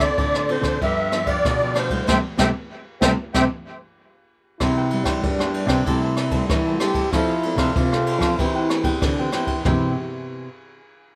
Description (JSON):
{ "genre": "samba and choro", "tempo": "95 BPM", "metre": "4/4", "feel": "straight", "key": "C major", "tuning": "A4 = 436 Hz", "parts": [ { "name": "musette accordion", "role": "melody", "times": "0.0-3.4 s", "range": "C5 to G5", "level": "-24 LUFS", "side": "equal", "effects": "slapback echo" }, { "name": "cavaquinho", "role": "accompaniment", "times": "0.0-9.9 s", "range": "D4 to A5", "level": "-32 LUFS", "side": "equal", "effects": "slapback echo" }, { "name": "nylon-string guitar", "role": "accompaniment", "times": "0.0-10.5 s", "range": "G2 to A4", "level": "-30 LUFS", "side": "equal", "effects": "none" }, { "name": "nylon-string guitar", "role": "bass", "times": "0.0-9.9 s", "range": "G2 to G3", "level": "-27 LUFS", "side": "equal", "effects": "none" }, { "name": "jazz brush drum kit", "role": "drums", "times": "0.0-9.8 s", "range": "kick drum, ride cymbal, rim click, snare drum, toms", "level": "-26 LUFS", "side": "equal", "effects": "none" }, { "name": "breathy trombone", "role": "second line", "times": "4.6-9.9 s", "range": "D4 to G4", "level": "-28 LUFS", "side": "equal", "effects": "slapback echo" } ], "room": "little or no reverb", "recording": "none", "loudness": "-21 LUFS", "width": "mono", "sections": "0.0-4.6 A section; 4.6-9.7 B section; 9.7-11.2 C section", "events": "band accent 2.1-4.6", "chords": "0.0 Dm7; 0.8 G7; 2.1 C5; 4.6 Cmaj7; 5.9 Am7/C; 7.1 Fmaj7; 8.4 Cmaj7/E; 9.7 Cmaj7", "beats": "0.18 0.82 1.45 | 2.08 2.71 3.35 3.98 | 4.61 5.24 5.87 6.50 | 7.13 7.76 8.39 9.02 | 9.65 10.28" }